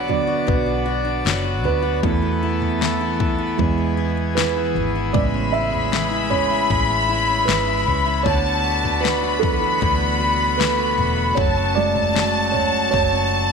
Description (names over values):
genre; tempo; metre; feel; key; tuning
pop ballad; 77 BPM; 4/4; straight; A major; A4 = 440 Hz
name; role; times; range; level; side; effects
felt-muted upright piano; accompaniment; 0.0-13.5 s; C#3 to F#5; -23 LUFS; right 9 dB; none
pipe organ, full organ; sustained chords; 0.0-13.5 s; D3 to E5; -26 LUFS; left 3 dB; none
fingerpicked steel-string acoustic guitar; arpeggios; 0.0-13.5 s; E2 to F#4; -28 LUFS; left 11 dB; none
vintage muted fingered electric bass; bass; 0.0-13.5 s; E1 to E2; -25 LUFS; left 1 dB; none
pop drum kit; drums; 0.1-13.1 s; kick drum, snare drum, toms; -24 LUFS; left 4 dB; none
warm studio violin section; second line; 5.1-13.5 s; A5 to B5; -21 LUFS; left 2 dB; none
room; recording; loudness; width
moderate echo chamber reverb, RT60 2.4 s; 1960s-style stereo with parts hard left and right, faint mains hum; -17 LUFS; side -5 dB against mid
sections
0.0-13.5 A section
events
felt piano solo 0.0-13.5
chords
0.0 Bm; 2.0 Esus4; 3.6 E; 5.1 Amaj7; 8.3 D6; 11.4 F#madd9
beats
0.47 1.25 | 2.03 2.81 3.59 4.37 | 5.15 5.92 6.70 7.48 | 8.26 9.04 9.82 10.60 | 11.38 12.16 12.94